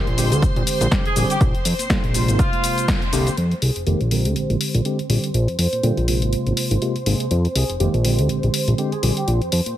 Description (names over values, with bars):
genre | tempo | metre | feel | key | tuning
filtered disco house | 122 BPM | 4/4 | swing 57% on 16ths | unclear | A4 = 439 Hz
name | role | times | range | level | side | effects
barky tine electric piano | accompaniment | 0.0-9.2 s | C3 to Ab4 | -24 LUFS | right 1 dB | medium stereo tremolo, phaser, vintage 12-bit sampler grit, sidechain pumping, low-pass filter
string machine, full ensemble | sustained chords | 0.0-9.8 s | C5 to C6 | -29 LUFS | right 1 dB | ensemble chorus, vintage 12-bit sampler grit, sidechain pumping, low-pass filter
fat analog bass | bass | 0.1-9.7 s | F1 to Bb2 | -20 LUFS | equal | sidechain pumping, low-pass filter
house drum kit | drums | 0.1-9.7 s | hi-hat, shaker, snare drum | -26 LUFS | left 2 dB | sidechain pumping on hats, small room ambience, sidechain pumping on perc
electronic kick drum | drums | 0.4-3.0 s | none | -21 LUFS | equal | small room ambience
clear horn section | melody | 1.1-9.3 s | F4 to C5 | -28 LUFS | equal | sidechain pumping, low-pass filter, tape echo
room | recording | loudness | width
light reverb | heavily compressed radio sound | -17 LUFS | side -12 dB against mid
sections
0.0-3.4 A section; 3.4-9.8 B section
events
band accent 2.9; filter sweep 3.4-9.8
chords
0.2 Bb13; 1.2 Abmaj13; 2.4 Ab69; 2.9 C9sus4; 3.4 Fm11; 4.1 Bb13; 5.1 Abmaj13; 6.3 Ab69; 7.3 Fm11; 8.0 Bb13; 9.0 Abmaj13 (rootless)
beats
0.42 0.92 | 1.41 1.90 2.39 2.88 | 3.38 3.87 4.36 4.85 | 5.34 5.83 6.33 6.82 | 7.31 7.80 8.29 8.79 | 9.28 9.77